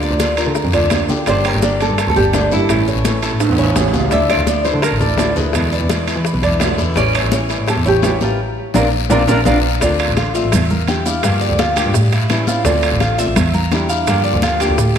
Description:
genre	latin, Cuban son and guajira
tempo	168 BPM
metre	4/4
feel	straight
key	D minor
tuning	A4 = 440 Hz
part	nylon-string guitar	accompaniment	0.0-14.8 s	B2 to G4	-23 LUFS	left 3 dB	none
part	Cuban tres	arpeggios	0.0-15.0 s	C#4 to F5	-20 LUFS	right 2 dB	analog delay
part	bright double bass	bass	0.0-15.0 s	G1 to E3	-18 LUFS	equal	none
part	bongos	percussion	0.0-15.0 s	none	-27 LUFS	left 8 dB	none
part	congas	percussion	0.0-15.0 s	none	-24 LUFS	left 2 dB	none
part	maracas	percussion	0.0-15.0 s	none	-32 LUFS	right 13 dB	none
part	guiro	percussion	0.2-15.0 s	none	-28 LUFS	left 11 dB	none
part	timbales	percussion	0.2-15.0 s	none	-23 LUFS	right 7 dB	none
part	nylon-string guitar	melody	1.3-9.6 s	D4 to E5	-20 LUFS	right 1 dB	lush chorus, analog delay
room	moderate lush hall reverb, RT60 2.1 s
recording	dreamy mix soaked in reverb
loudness	-13 LUFS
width	side -8 dB against mid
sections	0.0-9.8 A section; 9.8-15.0 B section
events	drum fill 3.4-4.1; band accent 8.4-9.8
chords	0.0 Bb/D; 1.3 Gm; 2.7 A; 4.1 Dmadd9; 5.5 E7; 7.0 A7; 8.4 Bbadd9; 9.8 Dm7; 10.5 Em7b5; 11.2 Gm7; 11.9 A7; 12.7 Dm7; 13.4 Em7b5; 14.1 Gm7

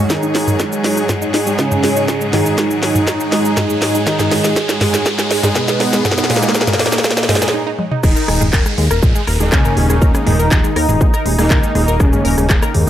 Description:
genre	melodic techno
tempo	121 BPM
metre	4/4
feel	straight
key	unclear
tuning	A4 = 440 Hz
part	bright symphonic string section	sustained chords	0.0-7.5 s	G#2 to G#4	-24 LUFS	left 1 dB	sidechain pumping
part	tight sequenced synth	arpeggios	0.0-12.9 s	G#3 to A#5	-23 LUFS	equal	chorus, sidechain pumping, analog delay
part	analog synth brass	stabs	0.0-12.9 s	D#3 to G#4	-21 LUFS	right 4 dB	chorus, sidechain pumping, analog delay
part	riser and downlifter	sound effects	0.0-12.0 s	none	-26 LUFS	equal	none
part	airy breathy pad	texture	0.0-7.5 s	D#4 to F#5	-27 LUFS	left 1 dB	chorus, sidechain pumping
part	wide unison lead	melody	0.1-12.5 s	A#3 to D#4	-20 LUFS	left 1 dB	lush chorus, sidechain pumping
part	glassy wavetable pluck	second line	0.1-12.5 s	A#2 to D#3	-26 LUFS	right 1 dB	chorus, sidechain pumping, analog delay
part	electronic kick drum	drums	0.1-12.6 s	none	-15 LUFS	equal	high-pass filter on kick
part	house drum kit	drums	0.1-12.9 s	crash cymbal, handclaps, hi-hat, rim click, shaker, snare drum, toms	-18 LUFS	equal	sidechain pumping on perc, sidechain pumping on hats, sidechain pumping on toms, sidechain pumping on cymbals
part	fat analog bass	bass	8.0-12.9 s	D#1 to D#2	-17 LUFS	equal	sidechain pumping
room	light reverb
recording	dry, gritty hardware recording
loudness	-12 LUFS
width	side -11 dB against mid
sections	0.0-8.0 A section; 8.0-12.9 B section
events	build-up 0.0-8.0; drum fill 0.0-7.5, 7.8; riser 0.0-7.5; filter sweep on synth arpeggio sound 0.0-8.0; filter sweep on analog synth lead 0.0-8.0; filter sweep on synth pluck 0.0-8.0; filter sweep on analog polysynth 0.0-8.0; break 7.5-8.0; drop 8.0-12.9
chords	0.1 G#m7; 8.0 D#5

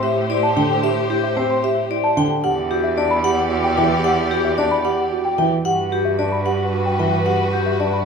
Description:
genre	classical, minimalist pattern music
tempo	112 BPM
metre	3/4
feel	straight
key	A dorian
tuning	A4 = 440 Hz
part	vibraphone with hard mallets	melody	0.0-8.0 s	G4 to G5	-22 LUFS	left 5 dB	none
part	warm studio violin section	sustained chords	0.0-8.1 s	F#4 to D5	-25 LUFS	left 3 dB	none
part	celesta	arpeggios	0.0-8.1 s	E5 to C6	-25 LUFS	equal	none
part	folk marimba with soft mallets	arpeggios	0.0-7.7 s	D4 to G4	-24 LUFS	right 8 dB	none
part	rich cello	bass	0.0-8.1 s	E2 to A2	-25 LUFS	right 3 dB	none
part	dark concert grand piano	accompaniment	0.6-8.0 s	D3 to D4	-25 LUFS	equal	none
room	wet recital hall reverb, RT60 1.6 s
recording	minimal, uncompressed stereo recording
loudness	-16 LUFS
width	side -6 dB against mid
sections	0.0-8.1 A section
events	none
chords	0.0 Am7; 2.4 Em7; 5.7 Gmaj7

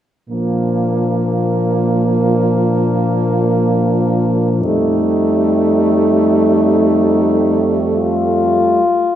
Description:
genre	classical, lyrical piece for horn quartet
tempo	45-60 BPM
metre	4/4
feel	rubato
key	Bb major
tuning	A4 = 440 Hz
part	mellow French horn	melody	0.3-9.2 s	D4 to F4	-18 LUFS	left 5 dB	none
part	clear French horn	second line	0.3-8.8 s	A3 to Bb3	-18 LUFS	right 5 dB	none
part	warm French horn	accompaniment	0.3-8.8 s	F3 to G3	-18 LUFS	left 1 dB	none
part	dark French horn	bass	0.3-8.9 s	F2 to Bb2	-19 LUFS	equal	none
room	wet recital hall reverb, RT60 1.3 s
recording	heard from further back in the room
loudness	-12 LUFS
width	side -10 dB against mid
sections	0.3-9.2 A section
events	none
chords	0.3 Bb; 4.6 F9

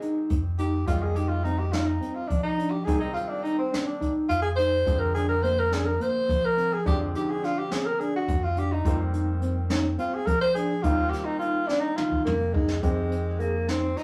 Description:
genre	progressive instrumental, band music in an uneven meter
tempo	211 BPM (eighths)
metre	7/8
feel	straight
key	F dorian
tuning	A4 = 437 Hz
part	breathy tenor saxophone	melody	0.0-14.0 s	Ab3 to C5	-29 LUFS	equal	none
part	clear grand piano	accompaniment	0.0-14.0 s	D3 to G4	-40 LUFS	equal	none
part	tine electric piano	arpeggios	0.0-14.0 s	Bb3 to Ab4	-33 LUFS	equal	none
part	jazz brush drum kit	drums	0.0-14.0 s	hi-hat, kick drum, snare drum, toms	-32 LUFS	equal	none
part	deep dub fingered electric bass	bass	0.3-13.9 s	C2 to F3	-31 LUFS	equal	none
room	moderate studio reverb, RT60 0.5 s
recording	rough rehearsal-room recording, small room ambience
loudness	-26 LUFS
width	mono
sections	0.0-12.8 A section; 12.8-14.0 B section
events	tenor saxophone solo 0.0-12.8; drum fill 11.7-12.8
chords	0.0 Fm7; 4.9 Bb7/F; 8.8 Eb69; 12.8 Fm7

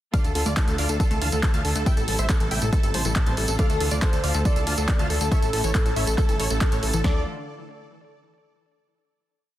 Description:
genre	uplifting trance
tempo	139 BPM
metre	4/4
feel	straight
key	D minor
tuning	A4 = 438 Hz
part	dense compressed supersaw	melody	0.1-7.2 s	F4 to A5	-30 LUFS	right 1 dB	sidechain pumping, digital delay
part	wide unison pluck	second line	0.1-7.2 s	A4 to A5	-36 LUFS	equal	none
part	dark studio string section	sustained chords	0.1-7.2 s	C3 to A4	-33 LUFS	equal	sidechain pumping
part	wide unison pluck	arpeggios	0.1-7.2 s	A2 to A3	-33 LUFS	left 2 dB	sidechain pumping, digital delay
part	punchy analog drum machine	drums	0.1-7.1 s	kick drum, snare drum	-22 LUFS	equal	overdrive, small room ambience
part	punchy analog drum machine	drums	0.1-7.0 s	handclaps, hi-hat, tambourine	-30 LUFS	right 1 dB	overdrive, small room ambience
part	fat analog bass	bass	0.2-7.2 s	G1 to D2	-26 LUFS	equal	sidechain pumping
part	warm velvety synth lead	second line	3.6-7.2 s	A4 to D5	-31 LUFS	equal	chorus, digital delay
room	digital ambience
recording	dense, heavily limited modern master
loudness	-20 LUFS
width	side -14 dB against mid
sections	0.1-7.0 drop; 7.0-8.8 final chord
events	drop 0.1-7.0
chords	0.1 Dm; 1.9 Am7; 3.6 Dm; 5.3 A; 7.0 D5

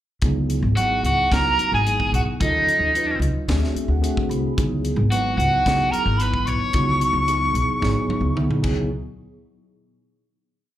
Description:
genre	electric jazz fusion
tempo	110 BPM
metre	4/4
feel	straight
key	unclear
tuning	A4 = 441 Hz
part	mellow tine electric piano	accompaniment	0.2-8.9 s	F#3 to B5	-26 LUFS	right 1 dB	medium stereo tremolo, lush chorus, slapback echo
part	upright bass	bass	0.2-8.9 s	G#1 to D#2	-23 LUFS	equal	none
part	crisp fusion drum kit	drums	0.2-8.8 s	crash cymbal, hi-hat, kick drum, snare drum, toms	-26 LUFS	equal	none
part	bright concert flute	melody	0.8-8.4 s	D#5 to C#6	-21 LUFS	equal	slapback echo
part	cranked stack guitar	second line	0.8-8.4 s	D#4 to C#5	-29 LUFS	left 2 dB	overdrive, slapback echo
room	small room ambience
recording	live gig heard through the venue's PA, club reverb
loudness	-18 LUFS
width	side -12 dB against mid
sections	0.2-8.9 A section; 8.9-10.8 final hit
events	tine electric piano fill 2.9-4.6; drum fill 7.8-8.9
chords	0.2 C#m11; 2.4 D#m7b5; 3.5 D7#11; 4.6 C#m11; 8.9 N.C.

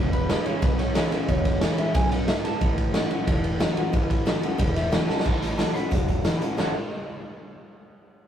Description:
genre	rockabilly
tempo	181 BPM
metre	4/4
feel	straight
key	A major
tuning	A4 = 438 Hz
part	picked steel-string acoustic guitar	accompaniment	0.0-6.7 s	E2 to F#4	-30 LUFS	left 1 dB	none
part	electric guitar through a small old amp	riff	0.0-6.7 s	E2 to C#5	-29 LUFS	equal	none
part	upright bass	bass	0.0-6.7 s	E1 to B1	-30 LUFS	equal	none
part	electric guitar at the edge of break-up	melody	0.1-6.7 s	B4 to B5	-32 LUFS	right 1 dB	warbly pitch drift
part	raw garage drum kit	drums	0.1-6.7 s	crash cymbal, hi-hat, kick drum, ride cymbal, snare drum	-25 LUFS	equal	none
room	light reverb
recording	rough rehearsal-room recording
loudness	-21 LUFS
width	side -9 dB against mid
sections	0.0-5.3 A section; 5.3-6.6 B section; 6.6-7.9 C section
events	drum fill 5.1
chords	0.0 E6; 2.6 A6

